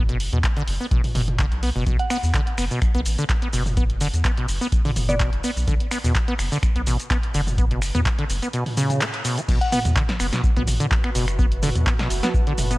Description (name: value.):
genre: acid house.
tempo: 126 BPM.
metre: 4/4.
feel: swing 54% on 16ths.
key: B minor.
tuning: A4 = 438 Hz.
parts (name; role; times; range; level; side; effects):
acid bass, saw; riff; 0.0-12.8 s; B2 to B3; -26 LUFS; equal; wide subtle chorus, cassette tape, sidechain pumping, tape echo.
round analog bass; bass; 0.0-12.8 s; F#1 to E2; -24 LUFS; equal; sidechain pumping.
punchy analog drum machine; drums; 0.1-12.8 s; crash cymbal, finger snaps, handclaps, hi-hat, shaker, snare drum, toms; -27 LUFS; equal; none.
electronic kick drum; drums; 0.4-12.4 s; none; -22 LUFS; equal; none.
soft synth bell; melody; 2.0-2.2, 5.1-5.4, 9.6-9.8 s; D5 to F#5; -29 LUFS; equal; chorus, tape echo.
granular cloud pad; texture; 10.3-12.8 s; F#4 to A5; -33 LUFS; right 2 dB; built-in reverb, sidechain pumping.
room: little or no reverb.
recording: none.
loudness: -19 LUFS.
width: side -20 dB against mid.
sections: 0.0-9.5 A section; 9.5-12.8 B section.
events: band accent 9.0; drop 9.5-12.8.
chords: 0.0 B5; 9.5 B7(no3).